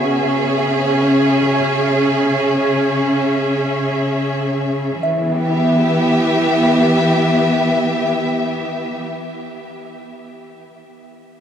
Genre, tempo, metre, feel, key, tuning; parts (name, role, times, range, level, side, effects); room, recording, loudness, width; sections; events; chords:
ambient; free time; A4 = 439 Hz
rich studio string section; sustained chords; 0.0-9.1 s; C#3 to E5; -15 LUFS; equal
soft synth bell; arpeggios; 0.0-10.8 s; F#4 to C#6; -27 LUFS; equal
wet huge ambient reverb, RT60 7.7 s; -14 LUFS; side -8 dB against mid
0.0-5.0 A section; 5.0-8.3 B section
0.0 C#m; 5.0 Em